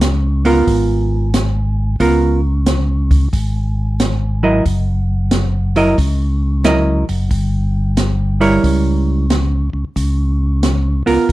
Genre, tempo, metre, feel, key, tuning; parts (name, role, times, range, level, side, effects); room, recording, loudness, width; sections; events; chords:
soul jazz organ trio; 90 BPM; 4/4; swing 66% on 8ths; A4 = 440 Hz
tonewheel organ; bass; 0.0-11.3 s; Gb1 to Db2; -15 LUFS; equal; overdrive
open jazz drum kit; drums; 0.0-11.3 s; hi-hat, kick drum, snare drum; -18 LUFS; equal
hollow-body jazz guitar; accompaniment; 0.4-11.3 s; Gb3 to Eb5; -14 LUFS; right 2 dB
little or no reverb; dark, warm production; -13 LUFS; side -16 dB against mid
0.0-11.3 A section
0.0 Db13; 4.7 Gb6; 7.3 Gdim7; 10.0 Db6